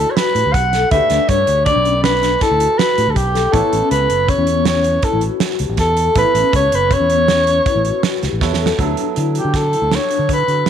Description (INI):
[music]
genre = progressive instrumental, band music in an uneven meter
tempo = 160 BPM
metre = 7/4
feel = straight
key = D major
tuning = A4 = 440 Hz
[part]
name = mellow soprano saxophone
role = melody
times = 0.0-10.7 s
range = G4 to F#5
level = -16 LUFS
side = equal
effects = none
[part]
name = bright grand piano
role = accompaniment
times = 0.0-10.7 s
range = F#3 to C#5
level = -27 LUFS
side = right 11 dB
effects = none
[part]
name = vibraphone with soft mallets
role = arpeggios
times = 0.0-10.7 s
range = B3 to A4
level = -22 LUFS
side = left 9 dB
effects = tape echo
[part]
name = fingered electric bass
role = bass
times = 0.0-10.6 s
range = F#1 to D3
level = -20 LUFS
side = equal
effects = none
[part]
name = loose indie drum kit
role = drums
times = 0.2-10.7 s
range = hi-hat, kick drum, snare drum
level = -20 LUFS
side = right 4 dB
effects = none
[sound]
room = moderate plate reverb, RT60 2.1 s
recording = 1960s-style stereo with parts hard left and right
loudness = -13 LUFS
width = side -8 dB against mid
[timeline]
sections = 0.0-8.8 A section; 8.8-10.7 B section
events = drum fill 8.4-8.8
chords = 0.0 Em7 (rootless); 3.5 A; 8.8 D